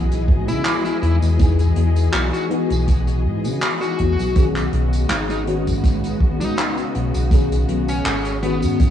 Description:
vaporwave; 81 BPM; 4/4; swing 54% on 16ths; E major; A4 = 442 Hz
mellow FM electric piano; accompaniment; 0.0-8.9 s; D#3 to G#4; -24 LUFS; left 2 dB; ensemble chorus, analog delay
muted studio string section; sustained chords; 0.0-8.9 s; C#3 to D#5; -29 LUFS; left 2 dB
chorused synth bass; bass; 0.0-8.9 s; G#1 to C#3; -20 LUFS; equal
soft-mallet drum kit; drums; 0.1-8.9 s; handclaps, hi-hat, tambourine; -27 LUFS; right 1 dB; vintage 12-bit sampler grit, gated reverb
kick drum; drums; 0.3-8.9 s; -19 LUFS; equal; vintage 12-bit sampler grit
dark smooth lead guitar; melody; 0.5-8.9 s; B3 to F#4; -27 LUFS; left 2 dB; overdrive, tape echo
little or no reverb; cassette tape; -16 LUFS; side -10 dB against mid
0.0-8.9 A section
0.0 Emaj7; 4.4 B69
0.65 | 1.39 2.13 2.88 3.62 | 4.36 5.10 5.84 6.58 | 7.32 8.06 8.80

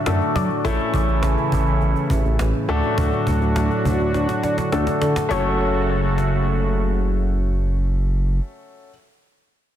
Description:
synth-pop; 103 BPM; 4/4; straight; F# minor; A4 = 440 Hz
clear baby grand piano; accompaniment; 0.0-8.9 s; A3 to A4; -25 LUFS; left 3 dB
warm analog pad; sustained chords; 0.0-8.4 s; A2 to A4; -23 LUFS; right 1 dB; chorus
warbly dusty pluck; second line; 0.1-0.5, 5.3-7.0 s; C#5 to E5; -30 LUFS; left 4 dB; chorus, ping-pong delay
smooth synth bass; bass; 0.1-8.4 s; F#1 to F#3; -21 LUFS; equal
cajon; drums; 0.1-6.3 s; -27 LUFS; equal
light reverb, studio reverb; dense, heavily limited modern master; -18 LUFS; side -11 dB against mid
0.0-5.3 A section; 5.3-7.6 B section
drum fill 4.1-5.3
0.0 D/F#; 0.6 A; 2.7 D; 5.3 F#m
0.06 | 0.65 1.23 1.81 2.39 | 2.98 3.56 4.14 4.72 | 5.31 5.89 6.47 7.05

